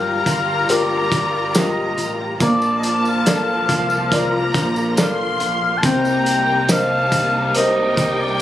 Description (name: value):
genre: pop ballad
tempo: 70 BPM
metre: 4/4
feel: straight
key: unclear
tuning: A4 = 440 Hz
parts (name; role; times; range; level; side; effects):
- warm oboe; melody; 0.0-8.4 s; D5 to A5; -20 LUFS; left 1 dB; ping-pong delay
- rich studio violin section; second line; 0.0-8.4 s; G5 to C6; -26 LUFS; left 1 dB; none
- felt-muted upright piano; accompaniment; 0.0-8.4 s; G3 to Eb5; -22 LUFS; left 1 dB; none
- warm studio string section; sustained chords; 0.0-8.4 s; C3 to Bb4; -24 LUFS; equal; none
- fingered electric bass; bass; 0.0-8.4 s; G1 to C2; -28 LUFS; equal; none
- loose indie drum kit; drums; 0.3-8.2 s; hi-hat, kick drum, snare drum; -21 LUFS; equal; none
- tambourine; percussion; 0.3-8.2 s; none; -32 LUFS; right 2 dB; none
room: small room ambience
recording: recorded on a phone in the room, studio ambience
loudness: -16 LUFS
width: side -12 dB against mid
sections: 0.0-8.4 A section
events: none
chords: 0.0 Gm7; 2.4 Bbmaj7; 5.8 Cm7